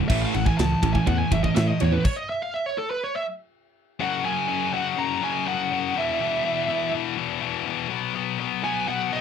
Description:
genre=heavy metal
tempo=123 BPM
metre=4/4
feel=straight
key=unclear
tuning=A4 = 440 Hz
part: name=distorted electric guitar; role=riff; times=0.0-2.0 s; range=A2 to A3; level=-25 LUFS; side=right 12 dB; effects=overdrive
part: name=scooped high-gain guitar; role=riff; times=0.0-9.2 s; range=E2 to B3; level=-26 LUFS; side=left 11 dB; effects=distortion
part: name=high-gain lead guitar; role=melody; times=0.1-9.2 s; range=A4 to A#5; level=-26 LUFS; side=right 1 dB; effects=distortion, slapback echo
part: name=modern bright picked electric bass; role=bass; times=0.1-2.0 s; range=F#1 to A2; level=-24 LUFS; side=left 1 dB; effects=none
part: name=tight metal drum kit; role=drums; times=0.1-2.2 s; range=crash cymbal, kick drum, ride cymbal, snare drum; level=-25 LUFS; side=equal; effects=none
room=little or no reverb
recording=dry, close 1970s-style studio recording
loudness=-22 LUFS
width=side -7 dB against mid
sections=0.0-4.0 A section; 4.0-9.2 B section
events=lead electric guitar solo 0.0-4.0; stop 2.1-4.0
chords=0.1 A5; 4.0 F#5; 6.0 E5; 7.9 B5

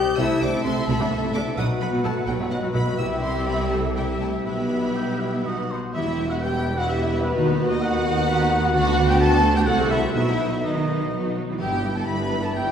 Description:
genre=classical, dramatic, fast romantic movement for symphony orchestra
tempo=118-132 BPM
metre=3/4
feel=rubato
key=E minor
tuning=A4 = 435 Hz
part: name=rich symphonic violin section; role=melody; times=0.0-12.7 s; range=B4 to G6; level=-30 LUFS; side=left 2 dB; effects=none
part: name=mellow oboe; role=second line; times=0.0-12.7 s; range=B4 to B5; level=-33 LUFS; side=right 1 dB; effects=none
part: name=small flute group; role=second line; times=0.0-12.7 s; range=B4 to B5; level=-32 LUFS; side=equal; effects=none
part: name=warm clarinet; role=second line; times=0.0-12.7 s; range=F#4 to E5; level=-31 LUFS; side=equal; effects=none
part: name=warm symphonic violin section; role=second line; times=0.0-12.7 s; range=B3 to F#5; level=-30 LUFS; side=equal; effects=none
part: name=warm symphonic viola section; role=accompaniment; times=0.0-12.7 s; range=F#3 to A4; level=-29 LUFS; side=right 2 dB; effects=none
part: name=mellow French horn section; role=sustained chords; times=0.0-12.7 s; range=F#3 to A4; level=-29 LUFS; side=left 3 dB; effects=none
part: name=concert harp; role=arpeggios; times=0.0-12.7 s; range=G2 to A5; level=-31 LUFS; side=left 4 dB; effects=none
part: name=mellow tuba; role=bass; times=0.0-12.7 s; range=E1 to D#2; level=-30 LUFS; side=right 2 dB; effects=none
part: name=rich symphonic cello section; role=bass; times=0.0-12.7 s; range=D2 to F#3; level=-30 LUFS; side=right 2 dB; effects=none
part: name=warm symphonic double bass section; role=bass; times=0.0-12.7 s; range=E1 to D#2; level=-29 LUFS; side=right 2 dB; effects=none
room=wet scoring stage reverb, RT60 1.7 s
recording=heard from further back in the room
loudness=-20 LUFS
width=side -8 dB against mid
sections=0.0-6.0 A section; 6.0-12.7 B section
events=none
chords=0.2 Am/C; 1.6 B; 3.0 C; 4.5 Em/B; 5.5 B; 6.0 Em; 7.4 B/D#; 8.7 Bm/D; 9.7 C6; 10.1 B; 11.6 Em/G

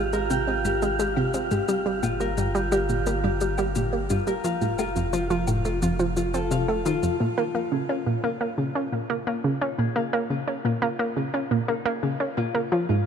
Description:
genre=ambient, sequencer-driven space music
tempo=87 BPM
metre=4/4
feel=straight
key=unclear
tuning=A4 = 440 Hz
part: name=Celtic harp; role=arpeggios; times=0.0-13.1 s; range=Eb4 to G5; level=-29 LUFS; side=moving between left 7 dB and right 2 dB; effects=auto-pan, tape echo
part: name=round analog bass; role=bass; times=0.0-7.2 s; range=F1 to Ab1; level=-31 LUFS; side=equal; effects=none
part: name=wind-like tuned noise texture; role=texture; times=0.0-7.2 s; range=F4 to F5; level=-35 LUFS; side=right 2 dB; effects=built-in reverb
part: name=analog pluck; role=riff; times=0.1-13.0 s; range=F2 to Db4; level=-24 LUFS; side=right 1 dB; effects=chorus, tape echo
part: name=shaker and woodblock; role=percussion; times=0.1-7.2 s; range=none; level=-39 LUFS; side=left 5 dB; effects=tape echo
room=moderate huge ambient reverb, RT60 7.9 s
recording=none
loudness=-23 LUFS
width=side -7 dB against mid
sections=0.0-7.2 A section; 7.2-13.1 B section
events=fade-in on harp 7.2-13.1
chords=0.0 Abmaj7; 1.7 Gm7; 4.4 F; 7.2 Bbm7

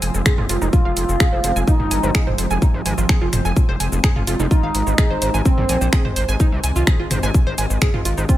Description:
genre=melodic techno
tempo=127 BPM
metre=4/4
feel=straight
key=F minor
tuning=A4 = 441 Hz
part: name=evolving wavetable pad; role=sustained chords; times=0.0-8.4 s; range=Eb3 to C4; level=-28 LUFS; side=equal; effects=chorus, built-in reverb, sidechain pumping
part: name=analog pluck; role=arpeggios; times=0.0-8.4 s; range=C4 to Ab5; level=-26 LUFS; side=right 2 dB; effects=chorus, sidechain pumping, dub echo
part: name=gritty driven synth bass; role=bass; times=0.0-8.2 s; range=F1 to C2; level=-21 LUFS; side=equal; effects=sidechain pumping
part: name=punchy analog drum machine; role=drums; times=0.0-8.4 s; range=finger snaps, hi-hat, shaker, toms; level=-23 LUFS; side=equal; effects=overdrive, studio reverb
part: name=electronic kick drum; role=drums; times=0.3-8.4 s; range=none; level=-16 LUFS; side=equal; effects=studio reverb
part: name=expressive synth lead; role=melody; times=0.7-8.4 s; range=C4 to F4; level=-25 LUFS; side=right 1 dB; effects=analog chorus, dub echo
room=digital ambience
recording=none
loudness=-15 LUFS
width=side -14 dB against mid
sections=0.0-8.4 A section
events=none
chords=0.0 Fm; 4.5 Ab

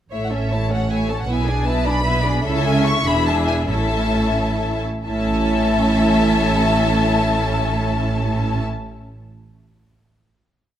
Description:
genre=quick classical-period movement for string orchestra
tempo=83-104 BPM (dotted quarters)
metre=6/8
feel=rubato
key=A major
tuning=A4 = 440 Hz
part: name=rich symphonic violin section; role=second line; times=0.1-8.6 s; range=G#4 to E5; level=-24 LUFS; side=left 3 dB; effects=none
part: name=rich symphonic viola section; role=accompaniment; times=0.1-8.6 s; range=A3 to E4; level=-24 LUFS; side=right 1 dB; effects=none
part: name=rich symphonic cello section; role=bass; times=0.1-8.6 s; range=E2 to C#3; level=-23 LUFS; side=right 2 dB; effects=none
part: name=rich symphonic double bass section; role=bass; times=0.1-8.6 s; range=E1 to C#2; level=-23 LUFS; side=right 2 dB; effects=none
part: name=warm symphonic violin section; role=melody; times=0.2-8.6 s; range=E5 to C#6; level=-24 LUFS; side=left 4 dB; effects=none
room=light reverb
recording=close, detailed microphones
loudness=-16 LUFS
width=side -10 dB against mid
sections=0.1-5.1 A section; 5.1-7.9 final chord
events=slowing down 1.9-5.1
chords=0.1 A; 1.3 E7/B; 2.5 A/C#; 3.0 E7; 3.7 A

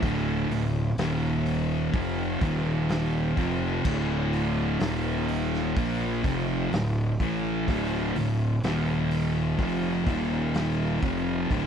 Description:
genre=stoner and doom metal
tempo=63 BPM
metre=4/4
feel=straight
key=unclear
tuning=A4 = 441 Hz
part: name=thick fuzz guitar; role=riff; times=0.0-11.7 s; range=D2 to Bb3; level=-29 LUFS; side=left 10 dB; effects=distortion
part: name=thick fuzz guitar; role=riff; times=0.0-11.7 s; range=D2 to Bb3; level=-28 LUFS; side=right 9 dB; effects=distortion
part: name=fuzz fingered electric bass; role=bass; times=0.0-11.7 s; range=D1 to Bb1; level=-31 LUFS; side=equal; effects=overdrive, tube saturation
part: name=raw garage drum kit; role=drums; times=0.0-11.7 s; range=crash cymbal, hi-hat, kick drum, snare drum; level=-33 LUFS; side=equal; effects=none
room=little or no reverb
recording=dry, close 1970s-style studio recording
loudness=-24 LUFS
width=side -8 dB against mid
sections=0.0-11.7 A section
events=none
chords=0.0 D5; 1.0 Eb5; 1.9 F5; 2.4 Eb5; 3.4 Dm; 4.8 Eb5; 5.8 Dm; 8.6 Eb5; 9.6 F5; 10.1 Eb5; 11.0 Dm

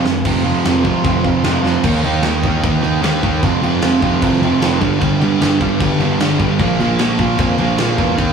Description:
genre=punk rock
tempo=152 BPM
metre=4/4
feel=straight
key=unclear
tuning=A4 = 440 Hz
part: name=crunchy overdriven guitar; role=riff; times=0.0-8.3 s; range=F2 to Eb4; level=-17 LUFS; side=right 8 dB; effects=none
part: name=sludgy distorted guitar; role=riff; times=0.0-8.3 s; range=F2 to Eb4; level=-19 LUFS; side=left 8 dB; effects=overdrive
part: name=fuzz picked electric bass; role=bass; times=0.0-8.3 s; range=F1 to F2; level=-21 LUFS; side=right 1 dB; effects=overdrive
part: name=big rock drum kit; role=drums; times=0.1-8.3 s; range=crash cymbal, kick drum, snare drum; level=-19 LUFS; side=equal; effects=none
room=light reverb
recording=band playing live in one room, studio ambience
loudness=-13 LUFS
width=side -6 dB against mid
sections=0.3-1.8 A section; 1.8-8.3 B section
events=drum fill 0.0, 1.6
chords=0.3 F5; 1.8 Eb5; 3.4 F5; 4.8 G5; 6.6 Bb5

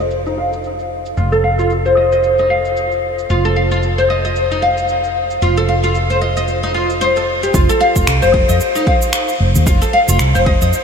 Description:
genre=organic downtempo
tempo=113 BPM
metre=4/4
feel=swing 57% on 16ths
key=F mixolydian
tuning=A4 = 443 Hz
part: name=oud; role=arpeggios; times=0.0-10.7 s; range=Eb4 to F5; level=-14 LUFS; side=left 1 dB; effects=low-pass filter, analog delay
part: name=woody fretless electric bass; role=bass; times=0.0-10.7 s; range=F1 to F2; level=-18 LUFS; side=equal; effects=ensemble chorus
part: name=electronic shaker and finger snaps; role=drums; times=0.1-10.8 s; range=none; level=-22 LUFS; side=right 2 dB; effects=low-pass filter on perc, low-pass filter on snare, low-pass filter on room
part: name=electronic kick drum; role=drums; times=7.5-10.6 s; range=none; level=-16 LUFS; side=equal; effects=overdrive
room=wet huge ambient reverb, RT60 7.3 s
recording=dreamy mix soaked in reverb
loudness=-12 LUFS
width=side -6 dB against mid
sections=0.0-7.5 A section; 7.5-10.8 B section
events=filter sweep on oud 0.0-7.5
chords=0.0 N.C.; 7.5 F5

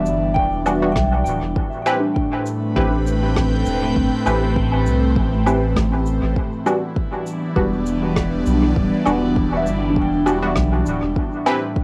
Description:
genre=ambient dub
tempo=100 BPM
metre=4/4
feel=swing 54% on 16ths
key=E minor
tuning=A4 = 440 Hz
part: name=airy breathy pad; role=sustained chords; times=0.0-11.8 s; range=A2 to G5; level=-24 LUFS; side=equal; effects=chorus, phaser
part: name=soft synth bell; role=arpeggios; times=0.0-11.8 s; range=D4 to G5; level=-27 LUFS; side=equal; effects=chorus, phaser, tape echo
part: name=filtered dub chord stab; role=stabs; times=0.0-11.6 s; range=G3 to B4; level=-27 LUFS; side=equal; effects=chorus, cassette tape, dub echo
part: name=soft dub sub bass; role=bass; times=0.0-11.1 s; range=D1 to C2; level=-24 LUFS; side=equal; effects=none
part: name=shaker, woodblock and rim click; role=drums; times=0.1-11.6 s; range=none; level=-30 LUFS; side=equal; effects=cassette tape, dub echo
part: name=electronic kick drum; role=drums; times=0.4-11.8 s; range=none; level=-25 LUFS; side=equal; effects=cassette tape
room=moderate studio reverb, RT60 0.6 s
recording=home recording on cassette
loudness=-19 LUFS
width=mono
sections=0.0-11.8 A section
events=none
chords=0.0 Em7; 1.6 Am7; 6.4 Em7; 11.2 Am7

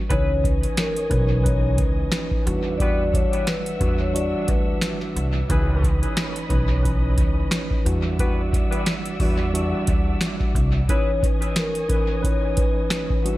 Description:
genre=hip hop, boom-bap hip-hop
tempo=89 BPM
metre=4/4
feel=swing 56% on 16ths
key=unclear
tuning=A4 = 440 Hz
part: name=vibraphone with soft mallets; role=melody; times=0.1-5.0, 10.9-13.4 s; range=A#4 to D5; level=-27 LUFS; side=left 3 dB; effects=high-pass filter, low-pass filter, dub echo
part: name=mellow tine electric piano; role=accompaniment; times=0.1-13.4 s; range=E3 to B4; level=-27 LUFS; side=right 1 dB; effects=slow stereo tremolo, cassette tape, high-pass filter, low-pass filter, dub echo
part: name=warm studio string section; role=sustained chords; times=0.1-13.4 s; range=D4 to E6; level=-34 LUFS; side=right 1 dB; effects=high-pass filter, low-pass filter
part: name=clear saxophone section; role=stabs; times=0.1-11.1 s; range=B3 to B4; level=-35 LUFS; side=left 1 dB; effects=high-pass filter, low-pass filter, dub echo
part: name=upright bass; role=bass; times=0.1-10.8 s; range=B1 to E2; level=-23 LUFS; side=equal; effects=none
part: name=booming analog drum machine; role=drums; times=0.1-13.4 s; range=hi-hat, kick drum, snare drum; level=-22 LUFS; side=equal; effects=none
room=light reverb, small room reverb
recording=echo-heavy mix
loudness=-19 LUFS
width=side -17 dB against mid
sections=0.1-13.4 A section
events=none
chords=0.1 C#m9; 2.5 Em9; 5.5 C#m9; 7.9 Em9; 10.9 C#m9

